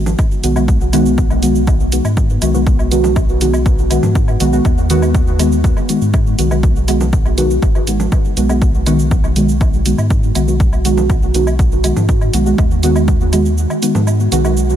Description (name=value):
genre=dub techno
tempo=121 BPM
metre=4/4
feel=straight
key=G# minor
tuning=A4 = 440 Hz
part: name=deep mellow chord stab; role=stabs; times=0.0-14.7 s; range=D#3 to F#4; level=-16 LUFS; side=equal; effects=chorus, phaser, cassette tape, sidechain pumping, dub echo
part: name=warm sub bass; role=bass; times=0.0-14.8 s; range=G#1 to G#2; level=-16 LUFS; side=equal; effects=tube saturation, sidechain pumping
part: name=electronic cabasa and hi-hat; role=drums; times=0.1-14.8 s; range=none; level=-26 LUFS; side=right 4 dB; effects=none
part: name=congas and woodblock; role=percussion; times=0.1-14.5 s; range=none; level=-28 LUFS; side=right 1 dB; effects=sidechain pumping on perc, dub echo
part: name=electronic kick drum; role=drums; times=0.2-13.2 s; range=none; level=-14 LUFS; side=equal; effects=none
room=light reverb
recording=none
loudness=-11 LUFS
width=side -10 dB against mid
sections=0.0-14.8 A section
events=filter sweep on synth stab 0.0-14.8; kick drops out 13.6-14.8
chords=0.0 G#m7